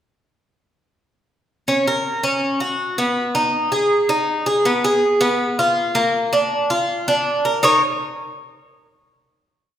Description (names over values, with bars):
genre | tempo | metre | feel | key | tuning
latin | 161 BPM | 4/4 | straight | Eb minor | A4 = 436 Hz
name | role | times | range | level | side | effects
Cuban tres | solo | 1.7-7.8 s | Bb3 to Db5 | -16 LUFS | equal | none
room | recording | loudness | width
wet recital hall reverb, RT60 1.7 s | recorded in a church or concert hall | -16 LUFS | side -10 dB against mid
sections
1.7-7.6 verse; 7.6-9.1 final chord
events
none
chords
1.7 Gbadd11; 3.2 Abm; 4.7 Fdim; 6.1 Bb; 7.6 Eb5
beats
| 1.68 2.05 2.42 2.79 | 3.16 3.54 3.91 4.28 | 4.65 5.03 5.40 5.77 | 6.14 6.52 6.89 7.26 | 7.63